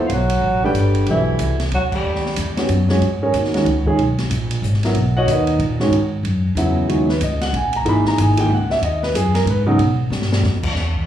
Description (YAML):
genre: modal jazz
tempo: 186 BPM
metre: 3/4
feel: swing 62% on 8ths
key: E minor, G# minor from 3.0 s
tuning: A4 = 440 Hz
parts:
  - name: breathy bass clarinet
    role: second line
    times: 0.0-2.7 s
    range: E3 to G3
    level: -24 LUFS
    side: right 2 dB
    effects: plate reverb, slapback echo
  - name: warm concert grand piano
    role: accompaniment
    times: 0.0-9.8 s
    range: C#3 to B5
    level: -19 LUFS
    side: right 1 dB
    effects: plate reverb, slapback echo
  - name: mellow tenor saxophone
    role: melody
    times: 0.1-2.7 s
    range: E4 to G4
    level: -23 LUFS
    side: right 1 dB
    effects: plate reverb, slapback echo
  - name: upright bass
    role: bass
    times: 0.1-11.1 s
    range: G1 to B2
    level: -19 LUFS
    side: equal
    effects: none
  - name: open jazz drum kit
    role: drums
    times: 0.1-11.0 s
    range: crash cymbal, hi-hat, kick drum, ride cymbal, snare drum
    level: -26 LUFS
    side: equal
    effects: none
room: moderate club reverb, RT60 0.6 s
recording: live gig heard through the venue's PA, club reverb, studio reverb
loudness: -16 LUFS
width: side -10 dB against mid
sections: 0.0-3.0 A section; 3.0-10.8 B section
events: band accent 1.9; drum fill 10.1-10.4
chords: 0.0 Em11; 2.0 D#7#9; 3.0 G#m11; 9.8 G7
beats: | 0.10 0.42 0.75 | 1.07 1.39 1.72 | 2.04 2.37 2.69 | 3.01 3.34 3.66 | 3.98 4.31 4.63 | 4.95 5.28 5.60 | 5.92 6.25 6.57 | 6.89 7.21 7.54 | 7.86 8.18 8.51 | 8.83 9.15 9.47 | 9.79 10.12 10.44 | 10.76